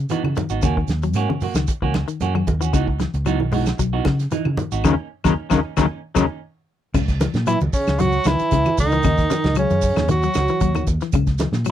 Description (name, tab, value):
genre	afrobeat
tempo	114 BPM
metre	4/4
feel	swing 53% on 16ths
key	C# dorian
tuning	A4 = 440 Hz
part	semi-hollow electric guitar	arpeggios	0.0-11.7 s	C#3 to G#3	-24 LUFS	left 9 dB	none
part	fingered electric bass	bass	0.0-11.7 s	G#1 to C#3	-22 LUFS	equal	none
part	semi-hollow electric guitar	stabs	0.1-6.3 s	E3 to F#4	-26 LUFS	right 9 dB	slapback echo
part	warm soul drum kit	drums	0.1-11.7 s	crash cymbal, hi-hat, kick drum, snare drum	-24 LUFS	equal	none
part	congas	percussion	0.1-11.5 s	none	-27 LUFS	right 3 dB	none
part	shekere	percussion	0.1-11.7 s	none	-34 LUFS	right 8 dB	none
part	claves	percussion	0.2-11.7 s	none	-36 LUFS	left 13 dB	none
part	clear tenor saxophone	melody	7.5-10.8 s	C#4 to F#4	-21 LUFS	equal	none
part	mellow trombone	second line	7.5-11.7 s	C#3 to F#3	-25 LUFS	right 7 dB	none
room	little or no reverb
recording	none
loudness	-18 LUFS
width	side -11 dB against mid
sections	0.0-6.9 A section; 6.9-11.7 B section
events	band accent 4.8-6.9; drum fill 6.2-6.9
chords	0.0 C#m11; 0.6 D#m7; 2.7 C#m11; 4.8 D#m7; 6.9 C#madd9; 9.0 D#m7; 11.1 C#m